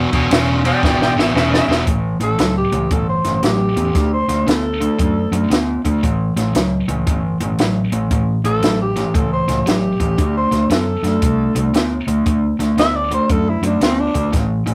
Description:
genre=electric blues shuffle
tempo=116 BPM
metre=4/4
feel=swing 64% on 8ths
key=unclear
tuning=A4 = 441 Hz
part: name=biting overdriven guitar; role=riff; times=0.0-14.7 s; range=E2 to B3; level=-21 LUFS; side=equal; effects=none
part: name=vintage muted fingered electric bass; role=bass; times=0.0-14.7 s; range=E1 to F#2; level=-25 LUFS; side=equal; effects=none
part: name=compact cocktail drum kit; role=drums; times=0.1-14.7 s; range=hi-hat, kick drum, ride cymbal, snare drum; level=-21 LUFS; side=equal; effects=none
part: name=clean lap steel guitar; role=second line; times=0.7-1.9 s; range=B4 to G5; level=-22 LUFS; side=equal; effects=none
part: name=bright saxophone section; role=stabs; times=0.8-1.9 s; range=D4 to G#4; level=-32 LUFS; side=equal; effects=none
part: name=growling tenor saxophone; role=melody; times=2.2-14.3 s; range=C4 to E5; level=-23 LUFS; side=equal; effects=none
room=light reverb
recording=rough rehearsal-room recording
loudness=-17 LUFS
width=mono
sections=0.0-1.9 A section; 1.9-14.7 B section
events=electric slide guitar solo 0.0-1.9; drum fill 0.8-1.9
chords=0.0 E9; 1.9 A7; 3.9 D; 6.0 A7; 10.2 D

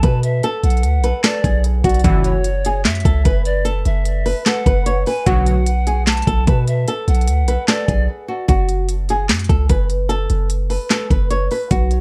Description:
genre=hip hop, trap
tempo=149 BPM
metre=4/4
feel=half-time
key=F# minor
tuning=A4 = 440 Hz
part: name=flamenco guitar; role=melody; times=0.0-12.0 s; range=F#4 to C#5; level=-24 LUFS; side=equal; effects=digital delay
part: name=polished pan flute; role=second line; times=0.0-8.1 s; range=C#5 to A5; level=-29 LUFS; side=equal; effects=digital delay
part: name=warm 808-style bass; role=bass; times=0.0-12.0 s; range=F#1 to B2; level=-20 LUFS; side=equal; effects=none
part: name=trap drum kit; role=drums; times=0.0-12.0 s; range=handclaps, hi-hat, kick drum, snare drum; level=-20 LUFS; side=equal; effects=overdrive, vintage 12-bit sampler grit
part: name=chorused polysynth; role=stabs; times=2.0-2.3, 5.3-5.6 s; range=C#2 to F#3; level=-23 LUFS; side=equal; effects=none
room=light reverb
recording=none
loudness=-17 LUFS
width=mono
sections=0.0-8.5 A section; 8.5-12.0 B section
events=break 8.1-8.5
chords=0.0 B7(no3); 2.0 F#m7; 5.3 Bm7; 8.5 F#m

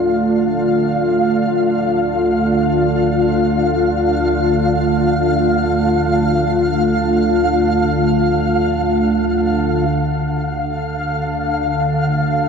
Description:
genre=dark ambient drone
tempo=free time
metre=none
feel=none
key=D minor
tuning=A4 = 442 Hz
part: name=dark analog pad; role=sustained chords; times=0.0-12.5 s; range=A3 to F5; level=-16 LUFS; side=equal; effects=chorus
part: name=organ-like drone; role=drone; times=0.0-12.5 s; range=D2 to D3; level=-20 LUFS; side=equal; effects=ensemble chorus, built-in reverb
part: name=flickering grainy texture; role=texture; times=0.0-12.5 s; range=F5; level=-22 LUFS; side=right 1 dB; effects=built-in reverb, wide subtle chorus
room=moderate plate reverb, RT60 3.1 s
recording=dreamy mix soaked in reverb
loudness=-14 LUFS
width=side -6 dB against mid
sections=0.0-9.9 A section; 9.9-12.5 B section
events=fade-in on synth drone 0.0-9.9; fade-in on synth texture 0.0-9.9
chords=0.0 Dm

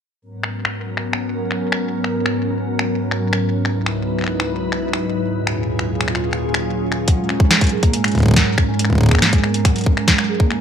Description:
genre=IDM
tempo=140 BPM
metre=4/4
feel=straight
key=G# minor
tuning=A4 = 440 Hz
part: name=glassy FM pad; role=sustained chords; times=0.3-10.6 s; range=C#2 to B5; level=-21 LUFS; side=equal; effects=ensemble chorus, built-in reverb, vintage 12-bit sampler grit
part: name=electro analog drum machine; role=drums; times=0.4-10.6 s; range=finger snaps, hi-hat, snare drum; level=-20 LUFS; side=left 1 dB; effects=low-pass filter on snare, low-pass filter on hats, digital delay
part: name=vibraphone with soft mallets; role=arpeggios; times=7.1-10.6 s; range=F#3 to G#4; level=-21 LUFS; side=right 5 dB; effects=vintage 12-bit sampler grit, ping-pong delay
part: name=electronic kick drum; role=drums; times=7.1-10.5 s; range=none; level=-16 LUFS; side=equal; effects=overdrive
room=little or no reverb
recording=none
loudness=-16 LUFS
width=side -8 dB against mid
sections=0.2-10.6 A section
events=none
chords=0.2 G#m11; 3.6 C#m11; 5.4 D#m11; 7.1 G#9sus4

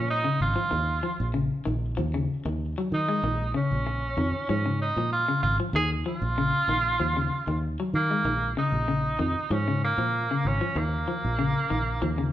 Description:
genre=afrobeat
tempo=96 BPM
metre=4/4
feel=straight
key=Bb minor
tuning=A4 = 440 Hz
part: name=clear tenor saxophone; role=melody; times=0.0-12.3 s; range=Bb3 to Ab4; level=-27 LUFS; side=right 2 dB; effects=none
part: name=electric guitar at the edge of break-up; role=arpeggios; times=0.0-12.3 s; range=Db3 to Ab3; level=-30 LUFS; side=left 3 dB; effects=none
part: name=fingered electric bass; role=bass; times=0.0-12.3 s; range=Ab1 to Eb3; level=-29 LUFS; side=equal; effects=none
room=wet large studio reverb, RT60 1.3 s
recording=band playing live in one room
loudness=-24 LUFS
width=side -12 dB against mid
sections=0.0-12.3 A section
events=none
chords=0.0 Bbm7; 0.7 Eb7sus2; 3.2 Bbm7; 5.7 Eb7sus2; 8.2 Bbm7; 10.8 Eb7sus2

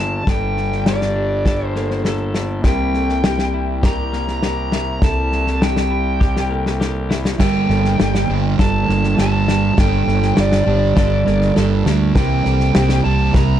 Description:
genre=post-rock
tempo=101 BPM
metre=4/4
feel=straight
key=G dorian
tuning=A4 = 442 Hz
part: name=nasal lead guitar with a parked wah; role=melody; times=0.0-13.6 s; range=D5 to Bb5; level=-22 LUFS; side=left 1 dB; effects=overdrive, digital delay
part: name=pedal steel guitar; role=sustained chords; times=0.0-13.6 s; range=C3 to A4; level=-33 LUFS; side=left 2 dB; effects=none
part: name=twelve-string electric guitar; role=arpeggios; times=0.0-13.6 s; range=G2 to A4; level=-26 LUFS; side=left 4 dB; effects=digital delay
part: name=fuzz fingered electric bass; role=bass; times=0.0-13.6 s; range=G1 to D2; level=-20 LUFS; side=equal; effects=overdrive
part: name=large celesta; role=arpeggios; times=0.3-13.6 s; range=G4 to Bb4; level=-29 LUFS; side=right 6 dB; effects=digital delay
part: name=loose indie drum kit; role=drums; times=0.3-13.5 s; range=crash cymbal, kick drum, snare drum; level=-19 LUFS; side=left 1 dB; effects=none
part: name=sludgy distorted guitar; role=riff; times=7.4-13.6 s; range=G2 to C4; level=-19 LUFS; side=right 10 dB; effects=overdrive
room=little or no reverb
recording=dark, warm production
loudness=-15 LUFS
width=side -11 dB against mid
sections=0.0-7.4 A section; 7.4-13.6 A section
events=drum fill 6.2-7.4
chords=0.0 Gmadd9; 2.7 C7; 7.4 Gmadd9; 12.2 C7

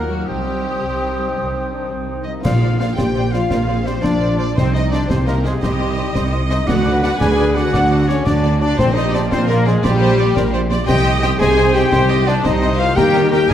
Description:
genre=cinematic, heroic adventure film score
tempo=114 BPM (dotted quarters)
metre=12/8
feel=straight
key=Bb mixolydian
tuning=A4 = 440 Hz
part: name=warm symphonic violin section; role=melody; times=0.0-13.5 s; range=Gb4 to Ab5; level=-27 LUFS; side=left 2 dB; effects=none
part: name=bright clarinet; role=second line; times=0.0-13.5 s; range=Bb3 to Ab5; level=-27 LUFS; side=left 1 dB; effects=none
part: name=flute section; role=second line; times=0.0-13.5 s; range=D5 to F6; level=-33 LUFS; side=left 1 dB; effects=none
part: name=mellow cor anglais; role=second line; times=0.0-13.5 s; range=Bb4 to G5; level=-30 LUFS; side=right 2 dB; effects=none
part: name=rich symphonic violin section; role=second line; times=0.0-13.5 s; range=Gb4 to Eb5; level=-31 LUFS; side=left 4 dB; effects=none
part: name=rich studio viola section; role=accompaniment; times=0.0-13.5 s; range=Eb3 to Eb5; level=-26 LUFS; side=right 2 dB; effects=none
part: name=mellow French horn section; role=sustained chords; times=0.0-13.5 s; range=Gb3 to Ab4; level=-20 LUFS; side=left 3 dB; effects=none
part: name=concert harp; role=arpeggios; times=0.0-13.5 s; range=Bb2 to C6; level=-26 LUFS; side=left 6 dB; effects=none
part: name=dark trumpet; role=stabs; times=0.0-2.2 s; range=Bb4 to C5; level=-26 LUFS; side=right 1 dB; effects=none
part: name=rich symphonic double bass section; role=bass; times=0.0-13.5 s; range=Bb1 to Eb2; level=-22 LUFS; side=right 2 dB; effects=none
part: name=warm studio cello section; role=bass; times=0.0-13.5 s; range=Bb2 to G3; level=-24 LUFS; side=right 2 dB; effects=none
part: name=concert snare drum, clash cymbals and concert bass drum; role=drums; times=2.4-13.5 s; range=none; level=-24 LUFS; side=equal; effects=none
part: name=dark tuba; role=bass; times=2.5-13.5 s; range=Bb1 to Eb2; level=-23 LUFS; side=right 3 dB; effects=none
part: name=timpani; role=percussion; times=2.5-2.9, 8.8-9.3 s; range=Bb2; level=-24 LUFS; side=equal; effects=none
room=moderate scoring stage reverb, RT60 1.9 s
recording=none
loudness=-14 LUFS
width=side -10 dB against mid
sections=0.0-2.4 A section; 2.4-13.5 B section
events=none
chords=0.3 Cm; 2.4 Bbadd9; 4.6 Cm; 6.7 D; 8.8 Bbadd9; 10.9 Cm; 13.0 Eb

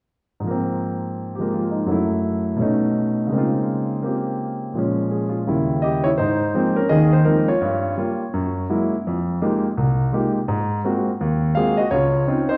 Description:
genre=solo jazz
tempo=167 BPM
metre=4/4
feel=swing 64% on 8ths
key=Ab major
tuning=A4 = 439 Hz
part: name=warm baby grand piano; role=solo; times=0.4-12.6 s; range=C2 to F5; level=-21 LUFS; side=equal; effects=none
room=wet recital hall reverb, RT60 1.3 s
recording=recorded in a church or concert hall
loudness=-21 LUFS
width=mono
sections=0.4-6.2 A section; 6.2-12.6 B section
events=none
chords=0.4 Ab69; 1.9 Gbm7; 2.6 B9; 3.3 Dbmaj13; 4.7 Bbm7; 5.5 Eb7b9; 6.2 Ab69; 7.6 Gm7b5; 8.3 Gb9; 9.0 Fm11; 10.5 Ab13; 11.9 Dbmaj9

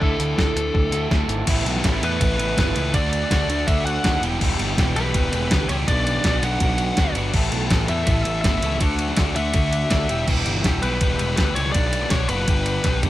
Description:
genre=indie rock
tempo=164 BPM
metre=4/4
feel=straight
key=unclear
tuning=A4 = 440 Hz
part: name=biting lead guitar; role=melody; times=0.0-13.0 s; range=A4 to F#5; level=-26 LUFS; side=left 1 dB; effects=overdrive
part: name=combo organ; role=sustained chords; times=0.0-13.1 s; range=A4 to E6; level=-36 LUFS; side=left 1 dB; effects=lush chorus
part: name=overdriven semi-hollow guitar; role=riff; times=0.0-13.1 s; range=E2 to A4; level=-29 LUFS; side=right 8 dB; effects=ensemble chorus
part: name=sludgy distorted guitar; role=riff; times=0.0-13.1 s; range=E2 to A4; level=-27 LUFS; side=left 6 dB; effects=overdrive
part: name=fuzz picked electric bass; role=bass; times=0.0-13.1 s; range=E1 to E2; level=-25 LUFS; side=equal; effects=overdrive
part: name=clean 12-bit digital drum machine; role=drums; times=0.0-13.1 s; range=crash cymbal, hi-hat, kick drum, ride cymbal, snare drum, toms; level=-22 LUFS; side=equal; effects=none
room=little or no reverb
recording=none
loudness=-18 LUFS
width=side -14 dB against mid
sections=0.0-1.5 A section; 1.5-13.1 B section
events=drum fill 12.9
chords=0.0 Dsus2; 1.5 Asus2; 2.9 Dadd9; 4.2 Em; 5.9 Bm; 7.3 Asus2; 8.8 Dadd9; 10.1 Em; 11.7 Bm; 12.5 G

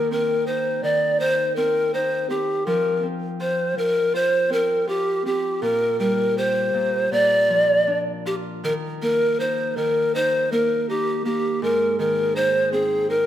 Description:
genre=children's music, lullaby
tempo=81 BPM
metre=4/4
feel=rubato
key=Eb major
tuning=A4 = 439 Hz
part: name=breathy reedy pan flute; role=melody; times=0.0-13.3 s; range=G4 to D5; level=-20 LUFS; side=equal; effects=none
part: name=Celtic harp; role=accompaniment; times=0.0-13.3 s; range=Ab2 to G4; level=-28 LUFS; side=right 1 dB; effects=none
room=moderate scoring stage reverb, RT60 1.6 s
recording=minimal, uncompressed stereo recording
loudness=-19 LUFS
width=side -11 dB against mid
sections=0.0-13.3 A section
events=none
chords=0.0 Cm/Eb; 2.7 F5; 5.6 Gmadd11/Bb; 7.1 Bb; 8.6 Eb5; 11.6 Ab

